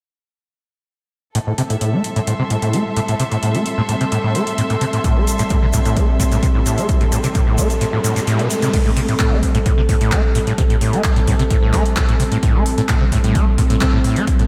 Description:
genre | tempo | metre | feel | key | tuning
acid house | 130 BPM | 4/4 | straight | unclear | A4 = 440 Hz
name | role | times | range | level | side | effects
warbly tape-like pad | sustained chords | 1.9-14.5 s | G3 to A4 | -26 LUFS | equal | chorus, built-in reverb, phaser, sidechain pumping
overdriven acid bass | riff | 1.4-14.4 s | A2 to A3 | -21 LUFS | equal | distortion, lush chorus, sidechain pumping, tape echo
electro analog drum machine | drums | 1.4-14.5 s | crash cymbal, handclaps, hi-hat | -29 LUFS | equal | none
rich studio string section | texture | 1.4-8.7 s | A4 to C6 | -29 LUFS | equal | sidechain pumping
electronic kick drum | drums | 5.0-14.4 s | none | -19 LUFS | equal | none
tube shaker | percussion | 5.0-8.7 s | none | -30 LUFS | equal | none
riser | sound effects | 7.0-8.7 s | none | -31 LUFS | equal | none
room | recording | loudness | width
moderate lush hall reverb, RT60 1.6 s, digital ambience | dreamy mix soaked in reverb | -17 LUFS | mono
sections
1.4-8.7 A section; 8.7-14.5 B section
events
filter sweep on acid bass 1.4-8.7; riser 7.0-8.7; kick drops out 7.8-8.7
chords
1.4 Am7

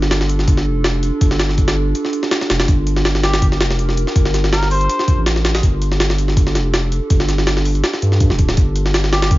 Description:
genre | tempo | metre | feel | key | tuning
drum and bass, jungle | 163 BPM | 4/4 | swing 54% on 16ths | G minor | A4 = 440 Hz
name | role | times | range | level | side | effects
warbly tape-like pad | sustained chords | 0.0-9.4 s | D4 to Bb4 | -24 LUFS | right 2 dB | chorus, built-in reverb
saturated sub bass | bass | 0.0-9.4 s | D1 to G2 | -17 LUFS | equal | none
jungle sampler-style drum kit | drums | 0.0-9.4 s | hi-hat, kick drum, snare drum | -16 LUFS | equal | none
trumpet with cup mute | melody | 3.2-5.2, 9.1-9.3 s | G4 to C5 | -23 LUFS | left 1 dB | dub echo
room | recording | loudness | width
digital ambience | vinyl crackle, nothing above 7.5 kHz | -14 LUFS | side -17 dB against mid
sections
0.0-9.4 A section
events
none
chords
0.0 Gm7

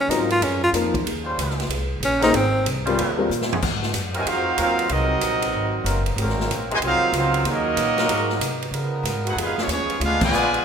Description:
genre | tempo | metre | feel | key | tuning
jazz, big band swing | 188 BPM | 4/4 | swing 64% on 8ths | unclear | A4 = 441 Hz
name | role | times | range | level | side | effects
warm tenor saxophone | melody | 0.0-2.7 s | C4 to F4 | -21 LUFS | equal | none
dark concert grand piano | accompaniment | 0.1-3.3 s | F3 to C5 | -24 LUFS | left 3 dB | none
muted trombone section | sustained chords | 0.1-10.6 s | Ab2 to C5 | -30 LUFS | equal | none
upright bass | bass | 0.1-10.6 s | Gb1 to Db3 | -27 LUFS | equal | none
swinging big-band drum kit | drums | 0.1-10.6 s | crash cymbal, hi-hat, kick drum, ride cymbal, snare drum, toms | -27 LUFS | right 1 dB | none
bright trumpet section | melody | 4.2-10.6 s | Cb4 to Ab5 | -22 LUFS | right 1 dB | none
bright trombone section | second line | 4.2-10.6 s | C3 to Gb4 | -26 LUFS | right 2 dB | none
room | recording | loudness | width
moderate concert hall reverb, RT60 2.0 s | minimal, uncompressed stereo recording | -19 LUFS | side -7 dB against mid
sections
0.0-3.6 A section; 3.6-10.6 B section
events
tenor saxophone solo 0.0-3.6; drum fill 3.3-3.6; band accent 10.2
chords
0.0 Bbm7; 1.1 Eb13; 2.3 Ab69; 3.0 Eb13; 3.6 Ab13; 7.5 Ebm7; 8.1 Ab9; 8.7 Db13; 10.0 Ddim7

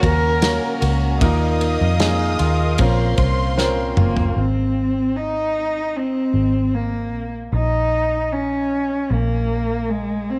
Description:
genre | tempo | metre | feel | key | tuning
pop ballad | 76 BPM | 4/4 | straight | Bb minor | A4 = 442 Hz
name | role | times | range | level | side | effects
dark cello | melody | 0.0-10.4 s | Ab3 to Bb4 | -23 LUFS | equal | none
warm concert grand piano | accompaniment | 0.0-4.4 s | Bb2 to C5 | -25 LUFS | equal | none
warm studio string section | sustained chords | 0.0-4.3 s | Db4 to Eb6 | -29 LUFS | equal | none
direct-recorded clean electric guitar | arpeggios | 0.0-4.9 s | Bb2 to Gb4 | -32 LUFS | equal | none
vintage muted fingered electric bass | bass | 0.0-10.4 s | Gb1 to F2 | -23 LUFS | equal | none
loose indie drum kit | drums | 0.0-4.4 s | kick drum, ride cymbal, snare drum, toms | -25 LUFS | equal | none
room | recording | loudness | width
light reverb, small room ambience | none | -20 LUFS | mono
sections
0.0-4.4 A section; 4.4-10.4 B section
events
drum fill 3.6-4.4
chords
0.0 Gb; 1.2 Ebsus2; 2.8 Bbmadd9; 4.4 Ab; 7.1 Bbmadd11

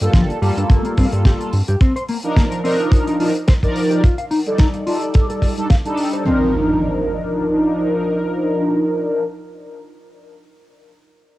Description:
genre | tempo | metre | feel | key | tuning
nu-disco, nu disco | 108 BPM | 4/4 | swing 55% on 16ths | C dorian | A4 = 440 Hz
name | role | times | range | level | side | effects
mellow synth brass | accompaniment | 0.0-9.2 s | F3 to D5 | -19 LUFS | equal | chorus, phaser, analog delay
fat analog bass | bass | 0.0-1.8 s | G1 to G2 | -18 LUFS | equal | none
damped 70s drum kit | drums | 0.0-6.2 s | hi-hat, snare drum | -26 LUFS | equal | cassette tape
mellow electric guitar | riff | 0.1-6.5 s | F3 to F5 | -23 LUFS | left 2 dB | lush chorus, low-pass filter, analog delay
kick drum | drums | 0.1-5.8 s | none | -13 LUFS | equal | cassette tape
impact | sound effects | 6.3-10.0 s | none | -25 LUFS | equal | none
room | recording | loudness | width
moderate studio reverb, RT60 0.6 s | home recording on cassette | -15 LUFS | side -17 dB against mid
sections
0.0-6.3 A section; 6.3-8.5 B section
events
filter sweep on clean electric guitar 0.0-6.3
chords
0.0 Gm9; 1.5 Cm11/G; 4.0 F13; 6.3 Cm11 (rootless)

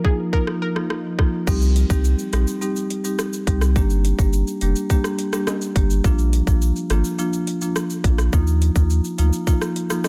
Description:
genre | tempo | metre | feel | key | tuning
dancehall | 105 BPM | 4/4 | straight | Eb major | A4 = 440 Hz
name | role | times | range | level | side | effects
analog pluck | melody | 0.0-0.7 s | Ab4 to Bb4 | -32 LUFS | equal | chorus, low-pass filter, tape echo
marimba with medium mallets | accompaniment | 0.0-10.1 s | F3 to G4 | -26 LUFS | equal | low-pass filter
ethereal airy pad | sustained chords | 0.0-1.4 s | F3 to Bb4 | -37 LUFS | equal | none
island pop drum kit | drums | 0.0-10.1 s | crash cymbal, hi-hat, kick drum, rim click, shaker | -24 LUFS | equal | overdrive
warm sub bass | bass | 1.5-9.3 s | F1 to Eb2 | -20 LUFS | equal | none
egg shaker and timbales | percussion | 1.5-10.1 s | none | -40 LUFS | equal | none
room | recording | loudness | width
digital ambience | none | -20 LUFS | mono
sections
0.0-1.5 A section; 1.5-10.1 B section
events
filter sweep 0.0-1.5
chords
0.0 Ebsus2; 1.5 Cm; 3.8 Gm; 6.0 Bb; 8.3 Ebsus2

